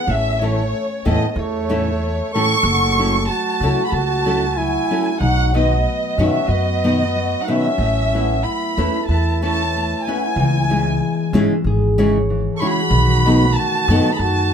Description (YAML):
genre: mexican folk, mariachi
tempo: 94 BPM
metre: 4/4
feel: straight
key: unclear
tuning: A4 = 440 Hz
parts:
  - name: dark chamber violin section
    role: melody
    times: 0.0-14.5 s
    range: C#5 to C#6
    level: -21 LUFS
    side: equal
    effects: none
  - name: dark trumpet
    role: second line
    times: 0.0-14.5 s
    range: A3 to A4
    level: -25 LUFS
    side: right 5 dB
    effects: none
  - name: concert harp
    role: arpeggios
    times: 0.0-14.5 s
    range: D#3 to E5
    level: -24 LUFS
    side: left 2 dB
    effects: none
  - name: upright bass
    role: bass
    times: 0.1-14.5 s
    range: F#1 to F#2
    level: -19 LUFS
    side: equal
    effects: none
  - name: nylon-string guitar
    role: accompaniment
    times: 0.4-14.1 s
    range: A2 to B4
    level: -20 LUFS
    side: left 1 dB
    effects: none
room: moderate small room reverb, RT60 0.5 s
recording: none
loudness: -15 LUFS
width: side -7 dB against mid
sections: 0.0-14.5 A section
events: none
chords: 0.1 A; 2.7 F#m7; 5.2 B; 7.8 Aadd9; 10.4 C#m; 12.9 B7